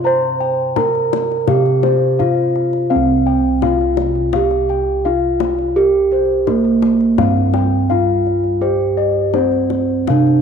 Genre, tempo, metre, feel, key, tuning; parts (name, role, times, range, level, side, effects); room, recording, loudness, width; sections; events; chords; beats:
Javanese gamelan; 84 BPM; 4/4; straight; C slendro; A4 = 440 Hz
gamelan-type bronze metallophone; melody; 0.0-10.4 s; Bb3-25c to C5; -16 LUFS; right 4 dB
gamelan-type bossed gongs; arpeggios; 0.0-10.4 s; Bb4-25c to Bb5-25c; -20 LUFS; left 10 dB
gamelan-type bossed gongs; bass; 0.0-10.4 s; C2 to C5; -20 LUFS; left 1 dB
kendang; percussion; 0.4-10.4 s; -25 LUFS; left 10 dB
moderate echo chamber reverb, RT60 2.2 s; 1960s-style stereo; -13 LUFS; side -7 dB against mid
0.0-10.4 A section
| 0.05 0.76 1.48 2.19 | 2.91 3.62 4.33 5.05 | 5.76 6.48 7.19 7.91 | 8.62 9.34 10.08